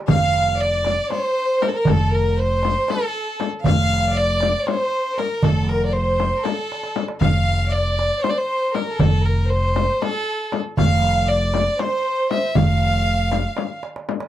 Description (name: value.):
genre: Turkish makam ensemble.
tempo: 236 BPM (eighths).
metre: 7/8.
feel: straight.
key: F makam rast.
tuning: A4 = 438 Hz.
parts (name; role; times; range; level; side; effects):
clear violin; melody; 0.1-13.8 s; A4-20c to F5; -23 LUFS; equal; none.
clear chamber violin section; second line; 0.1-13.8 s; A4 to F5; -25 LUFS; right 1 dB; slapback echo.
upright bass; bass; 0.1-13.4 s; F1; -20 LUFS; equal; none.
darbuka; percussion; 0.1-14.3 s; none; -24 LUFS; right 4 dB; none.
frame drum; percussion; 0.1-14.2 s; none; -25 LUFS; left 11 dB; none.
room: light reverb.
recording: dry, close 1970s-style studio recording.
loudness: -17 LUFS.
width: side -12 dB against mid.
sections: 0.1-14.3 A section.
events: drum fill 6.7-7.2, 13.8-14.3.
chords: none.